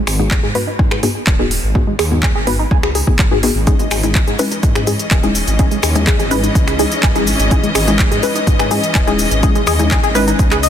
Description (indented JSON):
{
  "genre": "progressive house",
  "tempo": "125 BPM",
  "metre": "4/4",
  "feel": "straight",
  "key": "unclear",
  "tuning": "A4 = 440 Hz",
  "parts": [
    { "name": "tight sequenced synth", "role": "arpeggios", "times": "0.1-10.7 s", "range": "G#3 to G#5", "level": "-21 LUFS", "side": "equal", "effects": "chorus, phaser, cassette tape, sidechain pumping, tape echo" },
    { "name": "dark detuned saw bass", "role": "bass", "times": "0.1-10.7 s", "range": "D#1 to G#2", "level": "-20 LUFS", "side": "equal", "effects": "sidechain pumping" },
    { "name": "pop drum kit", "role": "drums", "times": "0.1-10.7 s", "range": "cabasa, finger snaps, handclaps, hi-hat", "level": "-20 LUFS", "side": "equal", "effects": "studio reverb" },
    { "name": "wide unison pluck", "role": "stabs", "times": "0.2-10.6 s", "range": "G#2 to B4", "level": "-20 LUFS", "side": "left 3 dB", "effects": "sidechain pumping, tape echo" },
    { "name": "electronic kick drum", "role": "drums", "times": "0.3-10.5 s", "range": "none", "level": "-15 LUFS", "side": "equal", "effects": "overdrive, studio reverb" },
    { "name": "clear studio string section", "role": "sustained chords", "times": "3.7-10.7 s", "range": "E3 to D#5", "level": "-22 LUFS", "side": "left 2 dB", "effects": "vintage 12-bit sampler grit, sidechain pumping" }
  ],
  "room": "light reverb",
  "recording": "dense, heavily limited modern master",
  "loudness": "-12 LUFS",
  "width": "side -9 dB against mid",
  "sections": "0.0-10.7 A section",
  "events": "filter sweep on synth arpeggio sound 0.0-10.7; filter sweep on synth pluck 0.0-10.7",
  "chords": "0.0 G#m7; 3.7 C#madd9"
}